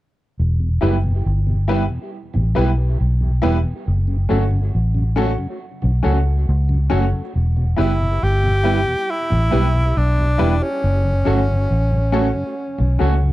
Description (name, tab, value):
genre	reggae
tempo	69 BPM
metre	4/4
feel	straight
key	E dorian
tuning	A4 = 440 Hz
part	vintage muted fingered electric bass	bass	0.4-13.3 s	E1 to C#2	-17 LUFS	equal	none
part	mellow tonewheel organ	accompaniment	0.6-13.3 s	E2 to G4	-28 LUFS	left 1 dB	overdrive, chorus vibrato, slow rotary speaker, dub echo
part	electric guitar at the edge of break-up	accompaniment	0.8-13.1 s	F#3 to G4	-26 LUFS	right 6 dB	spring reverb, dub echo
part	clear upright piano	stabs	0.8-13.3 s	C#4 to B4	-24 LUFS	left 6 dB	none
part	breathy tenor saxophone	melody	7.8-13.2 s	C#4 to G4	-22 LUFS	equal	dub echo
room	little or no reverb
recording	dry, close 1970s-style studio recording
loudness	-16 LUFS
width	side -16 dB against mid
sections	0.4-7.3 A section; 7.3-13.3 B section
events	none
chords	0.4 Em; 3.9 F#m; 7.3 Em; 10.8 F#m